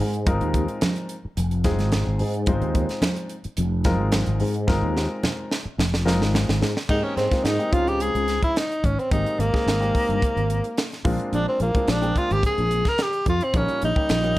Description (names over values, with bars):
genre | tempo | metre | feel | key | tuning
electric jazz fusion | 108 BPM | 4/4 | straight | Ab major | A4 = 441 Hz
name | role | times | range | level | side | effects
warm baby grand piano | accompaniment | 0.0-14.4 s | G3 to G5 | -28 LUFS | left 1 dB | none
sustaining fretless electric bass | bass | 0.0-14.3 s | F1 to Ab2 | -23 LUFS | equal | ensemble chorus
crisp fusion drum kit | drums | 0.1-14.4 s | crash cymbal, hi-hat, kick drum, snare drum | -25 LUFS | equal | none
congas | percussion | 0.3-6.5 s | none | -28 LUFS | right 1 dB | none
breathy tenor saxophone | melody | 6.9-14.4 s | Bb3 to Bb4 | -23 LUFS | equal | none
room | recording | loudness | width
light reverb | none | -20 LUFS | side -16 dB against mid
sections
0.0-6.9 A section; 6.9-14.4 B section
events
drum fill 4.7-6.9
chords
0.0 Ab69; 6.9 Abmaj9; 7.7 Dbmaj7; 9.1 Abmaj9; 11.0 Bb7; 13.5 Eb7/Bb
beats
| 0.26 0.81 1.37 1.92 | 2.47 3.02 3.58 4.13 | 4.68 5.23 5.79 6.34 | 6.89 7.45 8.00 8.55 | 9.11 9.66 10.21 10.77 | 11.32 11.88 12.43 12.98 | 13.54 14.09